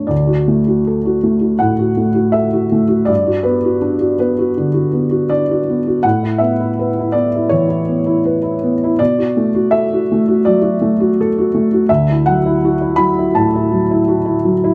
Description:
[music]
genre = neoclassical minimalist piano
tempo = 82 BPM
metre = 4/4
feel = rubato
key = D major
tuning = A4 = 439 Hz
[part]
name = felt-muted upright piano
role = solo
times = 0.0-14.7 s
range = D2 to B5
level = -15 LUFS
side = equal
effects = none
[sound]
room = moderate studio reverb, RT60 0.5 s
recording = none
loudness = -15 LUFS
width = mono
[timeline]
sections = 0.1-14.7 A section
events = none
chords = 0.1 Dadd9; 3.1 Gmaj7; 6.0 Asus2; 9.0 Bm7; 11.9 Dadd9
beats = | 0.11 0.86 1.61 2.35 | 3.10 3.84 4.58 5.31 | 6.04 6.77 7.51 8.25 | 8.99 9.72 10.45 11.17 | 11.89 12.61 13.33 14.05

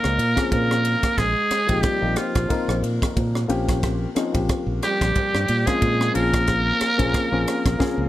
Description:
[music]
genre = electric jazz fusion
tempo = 91 BPM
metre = 4/4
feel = swing 56% on 16ths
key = Bb dorian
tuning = A4 = 440 Hz
[part]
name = trumpet with metal mute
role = melody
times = 0.0-8.1 s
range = F4 to Bb4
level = -23 LUFS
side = equal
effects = none
[part]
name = mellow trombone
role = second line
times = 0.0-8.1 s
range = F3 to Bb3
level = -27 LUFS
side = right 2 dB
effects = none
[part]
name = dark baby grand piano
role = accompaniment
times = 0.0-8.1 s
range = F3 to Bb4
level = -26 LUFS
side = left 4 dB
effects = none
[part]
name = fingered electric bass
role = bass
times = 0.0-8.1 s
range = Bb1 to Bb2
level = -24 LUFS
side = equal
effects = none
[part]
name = crisp fusion drum kit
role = drums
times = 0.0-8.0 s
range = kick drum, ride cymbal, rim click, snare drum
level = -26 LUFS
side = right 1 dB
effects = none
[sound]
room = moderate studio ambience, RT60 0.5 s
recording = none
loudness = -19 LUFS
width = side -14 dB against mid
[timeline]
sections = 0.0-8.1 A section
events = drum fill 7.8; grand piano fill 7.8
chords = 0.0 Bbm7; 1.2 F7sus4/Bb; 3.5 Eb13/Bb (rootless); 6.1 Bbm7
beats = 0.52 | 1.18 1.84 2.50 3.16 | 3.82 4.48 5.14 5.81 | 6.47 7.13 7.79

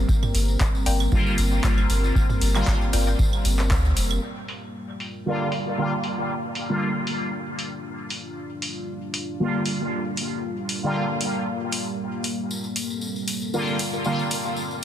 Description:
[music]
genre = dub techno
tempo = 116 BPM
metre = 4/4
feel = swing 54% on 16ths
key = G minor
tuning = A4 = 440 Hz
[part]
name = dark analog pad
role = sustained chords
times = 0.0-14.8 s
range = G3 to Bb4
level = -31 LUFS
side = equal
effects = chorus, sidechain pumping
[part]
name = soft dub sub bass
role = bass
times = 0.0-4.2 s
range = F1 to D2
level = -22 LUFS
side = equal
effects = sidechain pumping
[part]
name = electronic kick drum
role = drums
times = 0.1-3.8 s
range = none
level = -23 LUFS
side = equal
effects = none
[part]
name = tambourine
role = percussion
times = 0.1-4.2, 12.5-14.8 s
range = none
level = -34 LUFS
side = left 3 dB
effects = none
[part]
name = electronic toms and claves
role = percussion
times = 0.2-4.2 s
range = none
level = -32 LUFS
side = right 4 dB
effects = sidechain pumping on toms, sidechain pumping on perc, dub echo
[part]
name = booming analog drum machine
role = drums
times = 0.3-14.4 s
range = handclaps, hi-hat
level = -30 LUFS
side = equal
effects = low-pass filter on hats, low-pass filter on snare
[part]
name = filtered dub chord stab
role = riff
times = 0.9-3.2 s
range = F4 to G5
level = -36 LUFS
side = left 5 dB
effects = phaser, sidechain pumping, dub echo
[part]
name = resonant sweep polysynth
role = stabs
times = 1.1-14.2 s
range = D3 to F4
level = -26 LUFS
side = equal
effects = chorus, phaser, cassette tape, sidechain pumping, dub echo
[sound]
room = light reverb, digital ambience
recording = dense, heavily limited modern master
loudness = -22 LUFS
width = side -10 dB against mid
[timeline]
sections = 0.0-4.2 A section; 4.2-14.8 B section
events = band accent 3.7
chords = 0.0 Gm7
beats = | 0.09 0.60 1.12 1.64 | 2.16 2.67 3.19 3.71 | 4.22 4.74 5.26 5.78 | 6.29 6.81 7.33 7.85 | 8.36 8.88 9.40 9.91 | 10.43 10.95 11.47 11.98 | 12.50 13.02 13.54 14.05 | 14.57

